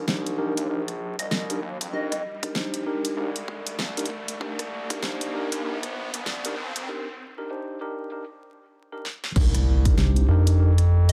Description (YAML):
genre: glitch hop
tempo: 97 BPM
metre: 4/4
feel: swing 60% on 16ths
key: C minor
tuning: A4 = 440 Hz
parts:
  - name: mellow tine electric piano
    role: stabs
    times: 0.0-10.7 s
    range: D4 to C5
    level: -34 LUFS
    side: equal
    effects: sidechain pumping, tape echo
  - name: gritty driven synth bass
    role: bass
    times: 0.0-11.1 s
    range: Bb1 to F2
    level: -27 LUFS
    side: equal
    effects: high-pass filter
  - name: riser and impact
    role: sound effects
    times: 0.0-11.1 s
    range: none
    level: -36 LUFS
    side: equal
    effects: none
  - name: pop drum kit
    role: drums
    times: 0.1-11.1 s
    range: crash cymbal, hi-hat, rim click, snare drum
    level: -32 LUFS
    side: equal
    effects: studio reverb
  - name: plucky unison lead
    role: melody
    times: 1.2-2.4, 11.1 s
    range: Eb5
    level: -37 LUFS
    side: equal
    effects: tape echo
  - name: electronic kick drum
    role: drums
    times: 2.4-5.0, 9.4-10.0 s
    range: none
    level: -25 LUFS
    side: equal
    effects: high-pass filter on kick, studio reverb
  - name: vowel-sweep wobble bass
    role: bass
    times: 10.0-10.3 s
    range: C2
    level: -22 LUFS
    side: equal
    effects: chorus
room: light reverb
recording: vinyl crackle, high-pass filter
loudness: -26 LUFS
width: mono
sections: 0.0-9.4 A section; 9.4-11.1 B section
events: build-up 0.0-9.4; riser 0.0-6.9; filter sweep on tine electric piano 0.0-9.4; break 6.9-9.4; drum fill 9.0-9.4; drop 9.4-11.1; impact 9.4-11.1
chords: 0.0 Cm9